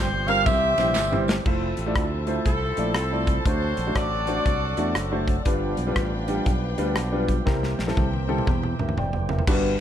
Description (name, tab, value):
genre	uptempo gospel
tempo	120 BPM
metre	4/4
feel	swing 64% on 8ths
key	F major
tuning	A4 = 442 Hz
part	bright saxophone section	melody	0.0-5.3 s	C4 to F5	-25 LUFS	equal	none
part	warm upright piano	accompaniment	0.0-9.8 s	G2 to G5	-27 LUFS	equal	none
part	percussive tonewheel organ	sustained chords	0.0-9.5 s	E3 to A4	-33 LUFS	right 3 dB	slow rotary speaker, overdrive
part	modern bright fingered electric bass	bass	0.0-9.7 s	F1 to E2	-28 LUFS	equal	none
part	modern studio drum kit	drums	0.3-9.6 s	crash cymbal, hi-hat, kick drum, ride cymbal, rim click, snare drum, toms	-26 LUFS	equal	none
part	tambourine and handclaps	percussion	0.3-1.4, 9.5-9.6 s	none	-36 LUFS	right 5 dB	none
part	warm studio string section	sustained chords	1.5-9.5 s	Bb4 to A5	-37 LUFS	left 4 dB	none
room	little or no reverb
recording	none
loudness	-21 LUFS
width	side -10 dB against mid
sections	0.0-1.5 A section; 1.5-9.5 B section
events	drum fill 1.0-1.5, 7.5-9.5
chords	0.5 C; 1.5 Fmaj7; 3.5 D7; 5.5 G7; 7.5 C7